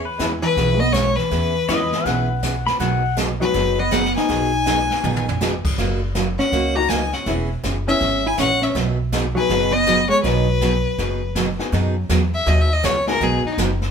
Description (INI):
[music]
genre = country, western swing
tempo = 161 BPM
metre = 4/4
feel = swing 64% on 8ths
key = B major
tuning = A4 = 439 Hz
[part]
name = pedal steel guitar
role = second line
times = 0.0-3.2 s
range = B4 to B5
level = -23 LUFS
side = left 4 dB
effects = none
[part]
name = picked steel-string acoustic guitar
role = accompaniment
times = 0.0-13.7 s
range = B2 to G#4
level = -25 LUFS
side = right 5 dB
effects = none
[part]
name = upright bass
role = bass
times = 0.0-13.9 s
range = E1 to F#2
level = -23 LUFS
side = right 1 dB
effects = none
[part]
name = tack piano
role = accompaniment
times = 0.2-13.6 s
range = G#3 to G#4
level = -28 LUFS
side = left 4 dB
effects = none
[part]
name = jazz brush drum kit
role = drums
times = 0.2-13.9 s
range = brushed snare drum, crash cymbal, hi-hat, kick drum, snare drum, toms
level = -26 LUFS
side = equal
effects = none
[part]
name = clear fiddle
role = melody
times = 0.4-13.5 s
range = D#4 to A#5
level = -21 LUFS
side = left 4 dB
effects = none
[part]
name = vintage hollow-body jazz guitar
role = second line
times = 0.4-11.3 s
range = E3 to F#4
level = -23 LUFS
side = right 1 dB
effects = none
[sound]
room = moderate studio reverb, RT60 0.7 s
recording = band playing live in one room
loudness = -17 LUFS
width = side -7 dB against mid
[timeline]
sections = 0.0-11.7 A section; 11.7-13.9 B section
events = drum fill 5.0-5.4; fiddle solo 11.7-13.9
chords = 0.0 E6; 2.8 B6; 5.8 F#6; 7.3 E6; 8.8 B6